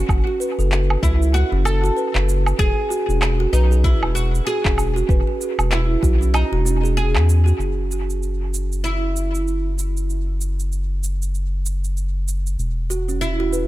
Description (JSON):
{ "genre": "organic downtempo", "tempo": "96 BPM", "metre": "4/4", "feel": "swing 59% on 16ths", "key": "unclear", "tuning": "A4 = 442 Hz", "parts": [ { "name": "oud", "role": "melody", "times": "0.0-13.7 s", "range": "D#4 to A4", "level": "-25 LUFS", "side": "equal", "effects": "analog delay" }, { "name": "kalimba", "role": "arpeggios", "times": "0.0-7.6, 12.9-13.6 s", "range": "C#4 to B4", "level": "-26 LUFS", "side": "right 4 dB", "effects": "analog delay" }, { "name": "round analog bass", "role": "bass", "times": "0.0-13.7 s", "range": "E1 to E2", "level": "-19 LUFS", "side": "equal", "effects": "sidechain pumping" }, { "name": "electronic kick drum", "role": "drums", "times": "0.1-6.2 s", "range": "none", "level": "-19 LUFS", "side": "equal", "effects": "overdrive" }, { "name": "electronic woodblock, cabasa and handclaps", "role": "drums", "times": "0.1-13.7 s", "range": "none", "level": "-27 LUFS", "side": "right 2 dB", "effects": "overdrive, dub echo" } ], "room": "small room ambience", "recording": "echo-heavy mix", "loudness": "-17 LUFS", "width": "side -16 dB against mid", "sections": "0.0-7.6 A section; 7.6-13.7 B section", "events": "kick drops out 7.0-7.6", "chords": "0.0 F#m; 2.6 E; 7.6 N.C." }